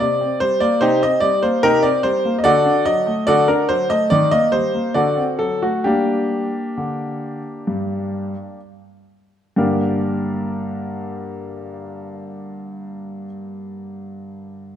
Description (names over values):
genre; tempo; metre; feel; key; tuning
classical-period piano sonatina; 62-74 BPM; 4/4; rubato; G minor; A4 = 440 Hz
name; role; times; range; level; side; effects
warm grand piano; solo; 0.0-14.8 s; G2 to Eb5; -17 LUFS; equal; none
room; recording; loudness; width
moderate recital hall reverb, RT60 1.7 s; dark, warm production; -16 LUFS; side -9 dB against mid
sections
0.0-9.6 A section; 9.6-13.3 B section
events
slowing down 0.8-9.6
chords
0.0 Cm7; 2.5 D; 4.1 Eb; 5.0 D7; 5.9 Gm